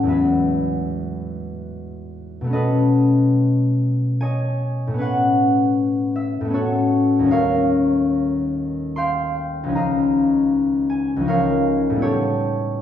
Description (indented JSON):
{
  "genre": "classical, solo harp piece",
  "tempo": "68-81 BPM",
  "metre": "3/4",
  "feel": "rubato",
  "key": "unclear",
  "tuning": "A4 = 440 Hz",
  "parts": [
    { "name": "concert harp", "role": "solo", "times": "0.0-12.8 s", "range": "C#2 to C6", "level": "-17 LUFS", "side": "left 1 dB", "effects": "none" }
  ],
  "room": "wet recital hall reverb, RT60 1.5 s",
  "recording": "recorded in a church or concert hall",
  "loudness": "-17 LUFS",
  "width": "side -10 dB against mid",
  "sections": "0.0-2.5 A section; 2.5-12.8 B section",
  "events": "none",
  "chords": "0.1 Eadd9; 2.5 B9; 5.0 A69; 7.3 D#9; 9.7 C#69; 12.0 A9"
}